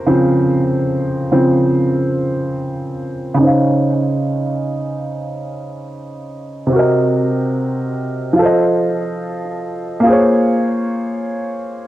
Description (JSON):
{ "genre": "hip hop", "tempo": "72 BPM", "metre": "4/4", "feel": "swing 59% on 16ths", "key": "Db major", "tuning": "A4 = 440 Hz", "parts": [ { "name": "warm upright piano", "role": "solo", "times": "0.0-11.9 s", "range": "C3 to F5", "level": "-15 LUFS", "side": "equal", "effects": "low-pass filter, cassette tape" } ], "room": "light reverb", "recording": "home recording on cassette", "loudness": "-14 LUFS", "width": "side -14 dB against mid", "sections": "0.0-3.4 A section; 3.4-11.9 B section", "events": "upright piano solo 0.0-3.4; filter sweep on upright piano 3.4-11.9", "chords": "0.0 Dbmaj7; 6.7 Cm7b5; 8.4 F7; 10.1 Bbm7" }